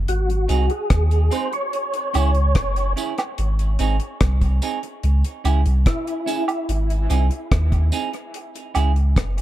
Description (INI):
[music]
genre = dub reggae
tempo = 73 BPM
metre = 4/4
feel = straight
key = C# harmonic minor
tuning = A4 = 440 Hz
[part]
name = warm sub bass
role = bass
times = 0.0-9.4 s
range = F#1 to D#2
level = -18 LUFS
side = equal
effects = none
[part]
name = percussive tonewheel organ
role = melody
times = 0.1-6.7 s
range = E4 to C#5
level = -27 LUFS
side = equal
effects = chorus vibrato, fast rotary speaker, dub echo
[part]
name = deep reggae drum kit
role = drums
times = 0.1-9.4 s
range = hi-hat, kick drum, rim click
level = -22 LUFS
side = equal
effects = none
[part]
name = semi-hollow electric guitar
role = accompaniment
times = 0.5-8.9 s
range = B#3 to G#4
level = -29 LUFS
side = right 7 dB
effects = dub echo
[part]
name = tambourine and woodblock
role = percussion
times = 0.5-8.9 s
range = none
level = -31 LUFS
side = right 4 dB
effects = dub echo
[sound]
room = studio ambience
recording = dark, warm production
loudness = -18 LUFS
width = side -14 dB against mid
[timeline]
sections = 0.1-9.4 A section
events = none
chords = 0.1 G#; 1.7 C#m; 3.4 G#; 5.0 C#m; 6.7 G#; 8.3 C#m